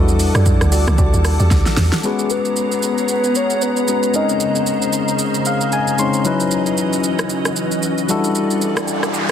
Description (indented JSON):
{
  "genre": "amapiano",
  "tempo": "114 BPM",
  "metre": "4/4",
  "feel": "swing 58% on 16ths",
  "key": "unclear",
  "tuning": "A4 = 441 Hz",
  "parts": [
    { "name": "tine electric piano", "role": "accompaniment", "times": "0.0-9.3 s", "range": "F#3 to B#5", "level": "-20 LUFS", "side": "left 4 dB", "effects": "none" },
    { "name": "glassy FM pad", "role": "sustained chords", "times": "0.0-9.3 s", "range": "C#3 to D6", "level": "-22 LUFS", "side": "equal", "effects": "ensemble chorus, built-in reverb, sidechain pumping" },
    { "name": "soft round pluck", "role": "stabs", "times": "0.0-1.5 s", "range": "F#4 to D5", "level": "-27 LUFS", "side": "right 5 dB", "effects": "chorus, tape echo" },
    { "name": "woody log drum bass", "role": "bass", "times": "0.0-1.9 s", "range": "C#2 to F#2", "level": "-15 LUFS", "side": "equal", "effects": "none" },
    { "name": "deep house drum kit", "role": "drums", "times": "0.1-9.3 s", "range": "hi-hat, kick drum, rim click, shaker, snare drum, toms", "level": "-20 LUFS", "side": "right 1 dB", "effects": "overdrive" },
    { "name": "soft octave-layered synth lead", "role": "melody", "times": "2.0-4.9 s", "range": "G#4 to D#5", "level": "-21 LUFS", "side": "equal", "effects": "chorus, phaser, tape echo" },
    { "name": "noise sweep", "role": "sound effects", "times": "8.6-9.3 s", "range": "none", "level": "-24 LUFS", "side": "right 3 dB", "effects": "none" }
  ],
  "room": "light reverb",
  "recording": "dense, heavily limited modern master",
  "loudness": "-15 LUFS",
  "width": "side -9 dB against mid",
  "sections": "0.0-2.0 A section; 2.0-9.3 B section",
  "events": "drop 0.0-2.0; drum fill 1.5-2.0; tine electric piano fill 5.2-6.2; noise sweep 8.6-9.3",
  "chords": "0.0 Em11; 2.0 G#m11; 4.1 A#m11; 6.2 C#m11; 8.1 Em11"
}